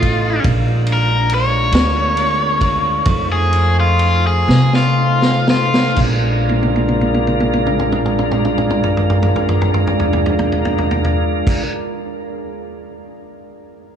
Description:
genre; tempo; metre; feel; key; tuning
slow blues; 38-48 BPM (dotted quarters); 12/8; straight; Bb mixolydian; A4 = 440 Hz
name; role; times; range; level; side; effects
overdriven electric guitar; melody; 0.0-6.0 s; F4 to Db5; -19 LUFS; left 2 dB; none
tonewheel organ; sustained chords; 0.0-11.6 s; Ab3 to Eb5; -20 LUFS; right 1 dB; chorus vibrato, slow rotary speaker
upright bass; bass; 0.0-11.6 s; A1 to C3; -18 LUFS; equal; none
vintage drum kit; drums; 0.0-11.7 s; crash cymbal, kick drum, ride cymbal, snare drum, toms; -19 LUFS; equal; none
room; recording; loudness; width
moderate cathedral reverb, RT60 6.7 s; dreamy mix soaked in reverb, small room ambience; -13 LUFS; side -8 dB against mid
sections
0.0-6.0 A section; 6.0-12.2 B section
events
slowing down 0.0-6.0; overdriven electric guitar solo 0.0-6.0; drum fill 4.5-6.0, 6.5-11.5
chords
0.4 Bb7; 3.1 F7; 6.0 Bb7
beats
| 0.44 1.72 3.06 4.47 | 5.97 7.53 9.09 10.65

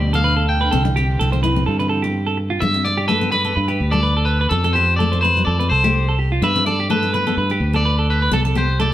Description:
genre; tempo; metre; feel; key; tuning
highlife; 126 BPM; 4/4; swing 54% on 16ths; G mixolydian; A4 = 440 Hz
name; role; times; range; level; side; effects
electric guitar at the edge of break-up; melody; 0.0-8.9 s; A4 to G5; -21 LUFS; left 1 dB; tape echo
picked steel-string acoustic guitar; accompaniment; 0.0-8.9 s; G3 to E4; -24 LUFS; left 4 dB; none
dark studio string section; sustained chords; 0.0-2.6 s; B2 to C4; -28 LUFS; right 2 dB; none
clean electric guitar; arpeggios; 0.0-8.9 s; F4 to C5; -23 LUFS; right 3 dB; none
fingered electric bass; bass; 0.0-8.9 s; C2 to G2; -19 LUFS; equal; none
room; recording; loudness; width
moderate stone room reverb, RT60 1.2 s; band playing live in one room; -15 LUFS; side -13 dB against mid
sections
0.0-2.6 A section; 2.6-8.9 B section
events
none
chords
0.0 G; 0.7 Cadd9; 2.6 G; 4.5 Fadd9; 6.4 G; 8.3 Csus2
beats
0.25 | 0.72 1.20 1.67 2.15 | 2.62 3.10 3.57 4.04 | 4.52 4.99 5.47 5.94 | 6.42 6.89 7.37 7.84 | 8.32 8.79

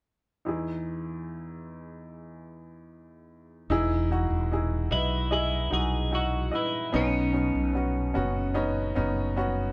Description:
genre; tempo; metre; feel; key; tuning
pop; 74 BPM; 4/4; straight; E major; A4 = 440 Hz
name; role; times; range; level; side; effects
clear upright piano; accompaniment; 0.5-9.7 s; E2 to D#5; -32 LUFS; equal; none
mellow fretless electric bass; bass; 3.7-9.7 s; E1 to B1; -31 LUFS; equal; none
twelve-string electric guitar; melody; 4.9-8.5 s; C#4 to G#4; -32 LUFS; equal; none
room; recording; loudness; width
light reverb; band playing live in one room; -28 LUFS; mono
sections
0.5-3.7 A section; 3.7-9.7 B section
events
none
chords
0.5 Emaj7; 6.9 Badd9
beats
| 0.45 1.26 2.07 2.88 | 3.70 4.51 5.32 6.13 | 6.94 7.75 8.56 9.37

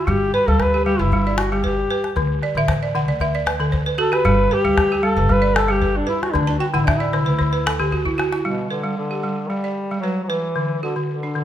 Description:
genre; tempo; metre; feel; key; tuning
west african traditional, West African string and xylophone music; 115 BPM; 4/4; straight; G major; A4 = 442 Hz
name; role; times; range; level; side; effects
mellow duduk; melody; 0.0-11.4 s; B2 to B4; -22 LUFS; left 1 dB; none
balafon; arpeggios; 0.0-11.4 s; D3 to A5; -21 LUFS; right 1 dB; none
upright bass; bass; 0.1-8.1 s; G1 to D2; -24 LUFS; equal; none
calabash; percussion; 0.1-8.4 s; none; -25 LUFS; left 2 dB; none
room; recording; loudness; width
moderate recital hall reverb, RT60 1.9 s; minimal, uncompressed stereo recording; -17 LUFS; side -11 dB against mid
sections
0.0-8.5 A section; 8.5-11.4 B section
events
duduk solo 0.0-8.5; balafon fill 2.4-4.3, 6.5-8.5; drum fill 7.8-8.5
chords
0.1 G; 2.2 D; 4.3 G; 6.4 D; 8.5 G; 10.6 D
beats
| 0.08 0.60 1.13 1.65 | 2.17 2.69 3.21 3.74 | 4.26 4.78 5.30 5.83 | 6.35 6.88 7.40 7.93 | 8.45 8.98 9.51 10.04 | 10.57 11.10

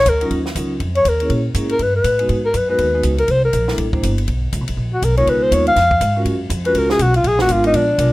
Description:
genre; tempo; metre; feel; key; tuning
jazz, small-group swing and bop; 242 BPM; 4/4; swing 60% on 8ths; Eb minor; A4 = 440 Hz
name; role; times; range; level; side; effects
breathy alto saxophone; melody; 0.0-8.1 s; D4 to F5; -16 LUFS; left 1 dB; none
upright bass; bass; 0.0-8.1 s; G1 to Bb2; -19 LUFS; equal; none
compact cocktail drum kit; drums; 0.1-8.1 s; hi-hat, kick drum, ride cymbal, snare drum; -26 LUFS; equal; none
vibraphone with medium mallets; accompaniment; 0.2-8.1 s; Gb3 to Db5; -22 LUFS; right 1 dB; none
room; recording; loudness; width
small room ambience; rough home demo mix; -14 LUFS; side -18 dB against mid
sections
0.3-8.1 A section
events
alto saxophone solo 0.0-8.1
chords
0.3 Ebm7; 1.3 Bbm7b5; 1.8 Ebaug; 2.3 Abm9; 3.3 C13; 4.3 Bmaj7(no3); 5.3 Db13; 6.3 Gbmaj7; 7.2 Bb7b9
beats
0.06 | 0.31 0.56 0.81 1.05 | 1.30 1.55 1.80 2.05 | 2.29 2.54 2.79 3.04 | 3.29 3.54 3.78 4.03 | 4.28 4.53 4.77 5.02 | 5.27 5.51 5.76 6.01 | 6.26 6.50 6.75 7.00 | 7.24 7.49 7.74 7.99

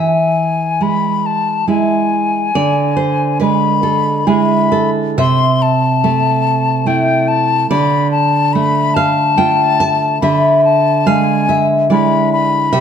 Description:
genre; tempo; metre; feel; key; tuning
romantic duo for flute and classical guitar; 71 BPM; 3/4; rubato; unclear; A4 = 438 Hz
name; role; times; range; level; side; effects
bright concert flute; melody; 0.0-12.8 s; G5 to C6; -15 LUFS; left 6 dB; none
nylon-string guitar; accompaniment; 0.0-12.8 s; C3 to A5; -13 LUFS; right 3 dB; none
room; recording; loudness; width
moderate scoring stage reverb, RT60 1.7 s; none; -11 LUFS; side -8 dB against mid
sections
0.0-12.8 A section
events
none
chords
0.0 E; 2.5 E7/D; 5.2 Am/C; 7.7 Dm; 10.2 E7/D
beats
0.82 1.68 | 2.55 3.41 4.28 | 5.19 6.04 6.87 | 7.70 8.54 9.39 | 10.23 11.08 11.93 | 12.75

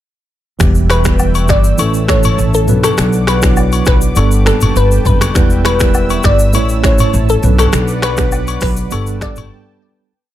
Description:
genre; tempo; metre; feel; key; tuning
afrobeats; 101 BPM; 4/4; straight; unclear; A4 = 439 Hz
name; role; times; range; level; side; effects
mellow tine electric piano; accompaniment; 0.6-10.1 s; E3 to C#5; -18 LUFS; right 2 dB; medium stereo tremolo
warm analog pad; sustained chords; 0.8-10.1 s; B4 to E6; -26 LUFS; equal; chorus
upright bass; bass; 0.6-9.5 s; E1 to B1; -14 LUFS; equal; none
afro-pop drum kit; drums; 0.6-9.5 s; finger snaps, hi-hat, kick drum, rim click, shaker, toms; -15 LUFS; equal; none
glassy wavetable pluck; melody; 0.9-9.3 s; A4 to D5; -18 LUFS; left 2 dB; chorus
agogo bells and woodblock; percussion; 0.9-9.5 s; none; -23 LUFS; left 7 dB; none
room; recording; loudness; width
little or no reverb; none; -10 LUFS; side -13 dB against mid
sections
0.6-10.1 chorus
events
fade-out 7.7-10.1; break 9.5-10.1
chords
0.6 Em; 1.8 A; 2.7 Bm; 4.2 Gadd9; 5.4 Em; 6.5 A; 7.4 Bm; 8.9 Gadd9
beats
| 0.60 1.19 1.79 2.38 | 2.98 3.57 4.16 4.76 | 5.35 5.95 6.54 7.13 | 7.73 8.32 8.92 9.51

